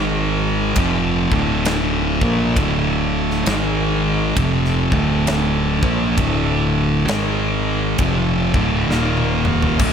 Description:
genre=stoner and doom metal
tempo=66 BPM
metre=4/4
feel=swing 61% on 8ths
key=unclear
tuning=A4 = 440 Hz
part: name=bright tonewheel organ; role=sustained chords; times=0.0-9.9 s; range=D3 to F5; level=-29 LUFS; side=right 1 dB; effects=overdrive, stopped rotary speaker
part: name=thick fuzz guitar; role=riff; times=0.0-9.9 s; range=D2 to Bb3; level=-21 LUFS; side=left 10 dB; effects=distortion
part: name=thick fuzz guitar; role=riff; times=0.0-9.9 s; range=D2 to Bb3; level=-21 LUFS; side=right 10 dB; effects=distortion
part: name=modern bright fingered electric bass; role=bass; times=0.0-9.9 s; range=D1 to Bb1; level=-24 LUFS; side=equal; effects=overdrive
part: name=big rock drum kit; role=drums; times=0.8-9.9 s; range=crash cymbal, kick drum, ride cymbal, snare drum, toms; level=-24 LUFS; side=left 1 dB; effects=none
room=light reverb, studio reverb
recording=none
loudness=-16 LUFS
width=side -7 dB against mid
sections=0.0-9.8 A section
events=drum fill 8.9-9.8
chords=0.0 G#5; 0.8 Dm; 3.5 G#5; 4.4 Dm; 7.1 G#5; 8.0 Dm; 8.9 Eb5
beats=0.77 1.67 | 2.58 3.48 4.38 5.28 | 6.18 7.09 7.99 8.89 | 9.80

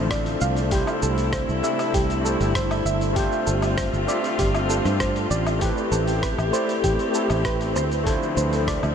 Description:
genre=sunset chillout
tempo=98 BPM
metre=4/4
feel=straight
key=A minor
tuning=A4 = 441 Hz
part: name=overdriven tine electric piano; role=accompaniment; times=0.0-8.9 s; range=A3 to E5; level=-26 LUFS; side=equal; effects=auto-pan, diffuse ambient delay
part: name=dark studio string section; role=sustained chords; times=0.0-8.9 s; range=C3 to G4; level=-27 LUFS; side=left 2 dB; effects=none
part: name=fingered electric bass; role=bass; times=0.0-8.9 s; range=G1 to G2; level=-25 LUFS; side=equal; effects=none
part: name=soft round pluck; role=arpeggios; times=0.1-8.8 s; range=G4 to F5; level=-28 LUFS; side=right 3 dB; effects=chorus, diffuse ambient delay
part: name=dusty soul sampler-style drum kit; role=drums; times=0.1-8.9 s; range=cabasa, hi-hat, rim click, woodblock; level=-31 LUFS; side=left 1 dB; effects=none
part: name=electronic kick drum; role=drums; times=0.1-8.8 s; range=none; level=-28 LUFS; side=equal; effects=none
room=moderate huge ambient reverb, RT60 7.5 s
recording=dreamy mix soaked in reverb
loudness=-20 LUFS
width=side -7 dB against mid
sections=0.0-8.9 A section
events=none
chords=0.0 Dm7; 0.7 C6; 3.2 G9sus4; 5.6 Am9; 8.1 Dm7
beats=0.10 | 0.72 1.33 1.94 2.55 | 3.17 3.78 4.39 5.00 | 5.62 6.23 6.84 7.45 | 8.06 8.68

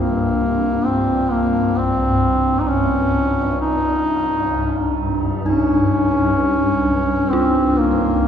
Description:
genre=dark ambient drone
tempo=free time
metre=none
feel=none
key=C in sen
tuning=A4 = 440 Hz
part: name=mellow duduk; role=melody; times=0.0-8.3 s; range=Bb3 to Eb4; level=-18 LUFS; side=equal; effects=tape echo
part: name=dark detuned synth bell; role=arpeggios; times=0.0-8.3 s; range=F4 to G4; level=-30 LUFS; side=right 4 dB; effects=none
part: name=swarming drone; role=drone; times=0.0-8.3 s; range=C2 to G2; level=-21 LUFS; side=left 1 dB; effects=built-in reverb, phaser
part: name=bronze singing bowl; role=texture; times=0.0-8.3 s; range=Eb4 to F4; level=-26 LUFS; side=equal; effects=none
room=wet cathedral reverb, RT60 5.4 s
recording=small room ambience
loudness=-16 LUFS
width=side -8 dB against mid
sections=0.0-8.3 A section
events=none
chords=0.0 Cm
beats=free time

